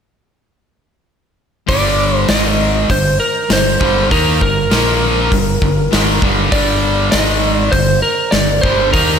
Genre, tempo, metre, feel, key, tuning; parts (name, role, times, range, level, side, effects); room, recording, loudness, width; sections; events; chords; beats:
hard rock; 99 BPM; 4/4; straight; G minor; A4 = 441 Hz
lightly driven lead guitar; melody; 1.7-9.2 s; Bb4 to Eb5; -16 LUFS; right 1 dB; slapback echo, tape echo
distorted electric guitar; riff; 1.7-9.2 s; G2 to Eb4; -19 LUFS; left 10 dB; distortion, slapback echo
distorted electric guitar; riff; 1.7-9.2 s; G2 to Eb4; -19 LUFS; right 10 dB; distortion
growling fingered electric bass; bass; 1.7-9.2 s; G1 to Eb2; -19 LUFS; equal; overdrive
big rock drum kit; drums; 1.7-9.1 s; hi-hat, kick drum, snare drum; -17 LUFS; equal
moderate lush hall reverb, RT60 2.8 s; big arena sound; -11 LUFS; side -7 dB against mid
1.7-9.2 A section
1.7 G5; 2.3 Ab5; 2.9 Gm; 4.7 Bb5; 5.3 Gm; 7.1 Ab5; 7.7 Gm
| 1.70 2.30 2.90 3.51 | 4.11 4.71 5.32 5.92 | 6.53 7.13 7.73 8.34 | 8.94